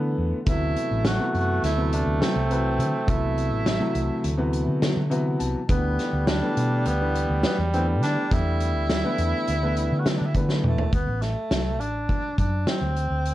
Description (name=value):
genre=progressive instrumental, band music in an uneven meter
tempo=206 BPM (eighths)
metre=9/8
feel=straight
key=D mixolydian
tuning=A4 = 440 Hz
part: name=warm tenor saxophone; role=melody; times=0.0-13.3 s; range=A3 to F#4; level=-28 LUFS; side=equal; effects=none
part: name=warm concert grand piano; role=accompaniment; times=0.0-10.8 s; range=C3 to A5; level=-28 LUFS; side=left 1 dB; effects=none
part: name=hollow-body short-scale fingered electric bass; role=bass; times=0.0-13.3 s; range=A1 to D3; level=-25 LUFS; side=equal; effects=none
part: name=mellow flugelhorn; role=second line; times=0.5-10.6 s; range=G3 to A3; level=-31 LUFS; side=right 3 dB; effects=none
part: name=loose indie drum kit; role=drums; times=0.5-13.3 s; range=hi-hat, kick drum, snare drum, toms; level=-26 LUFS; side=equal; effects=none
room=light reverb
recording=cassette tape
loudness=-21 LUFS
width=side -15 dB against mid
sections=0.0-10.9 A section; 10.9-13.3 B section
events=grand piano fill 4.8-5.7; drum fill 10.5-10.9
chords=0.0 D13; 5.7 G6/D; 10.9 D7